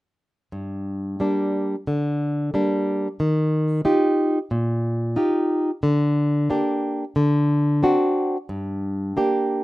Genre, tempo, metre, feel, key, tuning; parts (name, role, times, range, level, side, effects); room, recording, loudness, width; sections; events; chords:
fado; 90 BPM; 4/4; rubato; G minor; A4 = 439 Hz
flamenco guitar; accompaniment; 0.5-9.6 s; G2 to G4; -20 LUFS; equal
wet studio reverb, RT60 0.5 s; rough home demo mix; -20 LUFS; side -18 dB against mid
0.5-9.6 A section
0.5 Gm; 3.2 Ebadd9; 5.8 Gm/D; 7.2 D7; 8.5 Gm